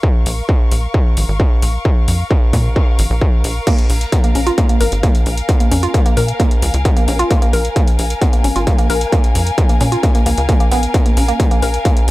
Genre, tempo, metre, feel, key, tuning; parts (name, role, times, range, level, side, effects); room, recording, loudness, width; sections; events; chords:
driving peak-time techno; 132 BPM; 4/4; straight; Bb minor; A4 = 441 Hz
electronic kick drum; drums; 0.0-11.9 s; -13 LUFS; equal; distortion
muted studio string section; texture; 0.0-12.1 s; Bb4 to Db6; -24 LUFS; left 2 dB; sidechain pumping
tight sequencer bass; bass; 0.3-12.1 s; Ab1 to Bb2; -17 LUFS; equal; tube saturation, sidechain pumping
techno drum kit; drums; 0.3-12.1 s; crash cymbal, hi-hat; -26 LUFS; left 2 dB
woody wave-folded pluck; riff; 3.7-11.9 s; Bb3 to Bb4; -20 LUFS; right 1 dB; chorus, tube saturation, sidechain pumping, analog delay
digital ambience; dry, gritty hardware recording; -12 LUFS; side -18 dB against mid
0.0-12.1 A section
fade-in on string section 0.0-12.1
0.0 Bbm